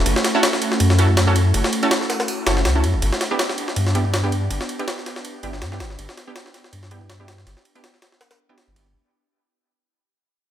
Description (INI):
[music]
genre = drum and bass, jungle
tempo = 162 BPM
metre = 4/4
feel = swing 55% on 16ths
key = unclear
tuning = A4 = 440 Hz
[part]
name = warbly tape-like pad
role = sustained chords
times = 0.0-8.9 s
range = A3 to G4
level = -27 LUFS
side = equal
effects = chorus, built-in reverb
[part]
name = soft dub sub bass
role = bass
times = 0.0-8.9 s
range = F#1 to G2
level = -19 LUFS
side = equal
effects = none
[part]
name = jungle sampler-style drum kit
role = drums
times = 0.1-8.9 s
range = kick drum, ride cymbal, snare drum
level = -23 LUFS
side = equal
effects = overdrive, high-pass filter on snare, small room reverb, high-pass filter on cymbals, high-pass filter on kick
[part]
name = orchestra-hit-like synth stab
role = stabs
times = 0.3-8.6 s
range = B3 to A4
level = -25 LUFS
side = right 2 dB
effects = built-in reverb, vintage 12-bit sampler grit, dub echo
[sound]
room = light reverb, digital ambience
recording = none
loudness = -17 LUFS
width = side -11 dB against mid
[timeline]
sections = 0.0-8.9 A section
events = fade-out 0.0-8.9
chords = 0.0 F#m7; 3.0 Em7/G